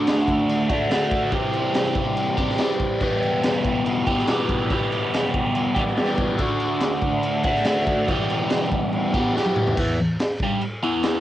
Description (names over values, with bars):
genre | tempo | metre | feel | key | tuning
garage rock duo or trio | 142 BPM | 4/4 | straight | E minor | A4 = 440 Hz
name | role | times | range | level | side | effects
overdriven electric guitar | riff | 0.0-11.2 s | E2 to G4 | -21 LUFS | equal | phaser, cassette tape
raw garage drum kit | drums | 0.1-11.1 s | crash cymbal, kick drum, snare drum, toms | -25 LUFS | equal | cassette tape
room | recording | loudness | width
light reverb | home recording on cassette, nothing above 10.4 kHz | -20 LUFS | side -13 dB against mid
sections
0.0-9.8 A section; 9.8-11.2 B section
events
drum fill 9.3-9.8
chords
0.0 D; 1.3 C; 3.0 Em; 6.4 D; 8.1 Em